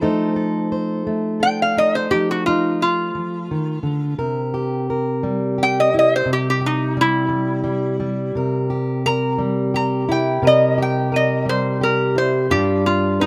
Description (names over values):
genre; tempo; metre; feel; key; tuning
acoustic country blues, solo or duo; 58 BPM (dotted quarters); 12/8; straight; C mixolydian; A4 = 436 Hz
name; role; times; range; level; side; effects
fingerpicked plugged-in steel-string acoustic guitar; accompaniment; 0.0-13.3 s; G2 to C5; -22 LUFS; equal; none
lap resonator guitar; melody; 1.4-13.3 s; Eb4 to Bb5; -21 LUFS; equal; none
room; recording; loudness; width
light reverb; recorded outdoors, with no room sound; -19 LUFS; mono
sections
0.0-13.3 A section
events
resonator guitar played with a steel bar solo 0.0-13.3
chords
0.0 F7; 4.2 C7; 12.5 G7(no3)